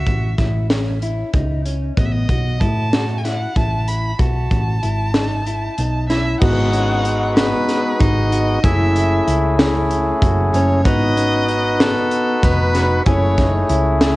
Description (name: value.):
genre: progressive instrumental, band music in an uneven meter.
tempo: 189 BPM (eighths).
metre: 7/8.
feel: straight.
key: unclear.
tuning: A4 = 439 Hz.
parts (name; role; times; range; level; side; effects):
warm violin; melody; 0.0-13.7 s; A4 to B5; -25 LUFS; equal; cassette tape, analog delay.
mellow electric guitar; arpeggios; 0.0-14.2 s; B3 to A4; -26 LUFS; left 1 dB; analog delay.
hollow-body short-scale picked electric bass; bass; 0.0-14.2 s; F1 to A2; -19 LUFS; equal; none.
crisp fusion drum kit; drums; 0.1-14.2 s; crash cymbal, hi-hat, kick drum, snare drum; -19 LUFS; equal; vintage 12-bit sampler grit, cassette tape.
flamenco guitar; second line; 6.1-13.7 s; A3 to F#4; -24 LUFS; right 1 dB; none.
percussive tonewheel organ; accompaniment; 6.4-14.2 s; G#3 to B4; -19 LUFS; left 1 dB; overdrive.
room: light reverb, studio reverb.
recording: home recording on cassette.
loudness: -15 LUFS.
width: side -19 dB against mid.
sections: 0.0-6.4 A section; 6.4-14.2 B section.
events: none.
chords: 0.0 F#m7/A; 2.0 Emaj9/A; 6.4 G#m7; 8.6 F#m9; 10.9 G#m7; 13.1 F#m9.